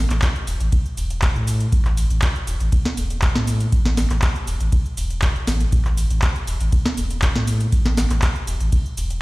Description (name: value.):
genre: acid house.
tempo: 120 BPM.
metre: 4/4.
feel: straight.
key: unclear.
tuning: A4 = 438 Hz.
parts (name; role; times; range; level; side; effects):
saturated sub bass; bass; 0.0-9.2 s; E1 to A2; -21 LUFS; equal; sidechain pumping.
booming analog drum machine; drums; 0.1-9.2 s; cabasa, handclaps, hi-hat, ride cymbal, snare drum; -25 LUFS; equal; none.
electronic kick drum; drums; 0.2-8.8 s; none; -20 LUFS; equal; none.
room: digital ambience.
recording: played on a big sound system in a bare room, stone room reverb.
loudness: -18 LUFS.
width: side -21 dB against mid.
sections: 0.0-9.2 A section.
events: none.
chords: none.